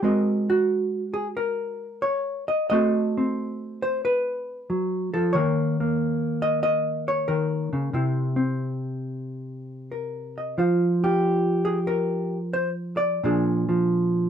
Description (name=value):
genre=solo jazz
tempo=91 BPM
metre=4/4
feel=swing 69% on 8ths, rubato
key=unclear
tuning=A4 = 440 Hz
part: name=hollow-body jazz guitar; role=solo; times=0.0-14.3 s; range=Bb2 to F5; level=-22 LUFS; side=equal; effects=none
room=light reverb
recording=dark, warm production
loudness=-22 LUFS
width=side -8 dB against mid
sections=0.0-14.3 A section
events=none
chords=0.0 Ab9; 2.7 Adim7; 5.3 Eb5; 7.9 C7; 10.6 F5; 13.2 Bb7